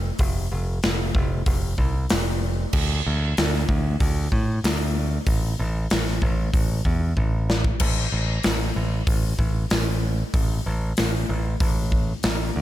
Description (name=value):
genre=hard rock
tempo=95 BPM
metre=4/4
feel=straight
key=A minor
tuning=A4 = 440 Hz
part: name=modern bright picked electric bass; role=bass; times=0.0-12.6 s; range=F1 to A2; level=-24 LUFS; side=equal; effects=none
part: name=big rock drum kit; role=drums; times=0.2-12.4 s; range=crash cymbal, hi-hat, kick drum, snare drum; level=-23 LUFS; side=equal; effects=none
room=little or no reverb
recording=none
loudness=-20 LUFS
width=side -14 dB against mid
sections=0.0-7.8 A section; 7.8-12.6 B section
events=drum fill 7.2-7.8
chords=none